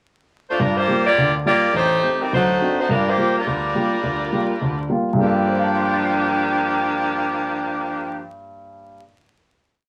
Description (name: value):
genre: jazz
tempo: 209 BPM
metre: 4/4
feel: swing 62% on 8ths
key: G minor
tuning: A4 = 440 Hz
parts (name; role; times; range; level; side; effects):
- clear saxophone section; melody; 0.5-8.3 s; F3 to D5; -22 LUFS; equal; none
- warm grand piano; accompaniment; 0.6-9.2 s; A1 to C7; -25 LUFS; equal; none
room: wet studio ambience, RT60 0.5 s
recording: vinyl crackle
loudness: -20 LUFS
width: mono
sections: 0.0-0.6 pickup bar; 0.6-5.2 A section; 5.2-7.5 final chord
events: none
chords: 0.0 N.C.; 0.6 Gm7; 1.7 Am7b5; 2.3 D7b9; 2.9 Gm7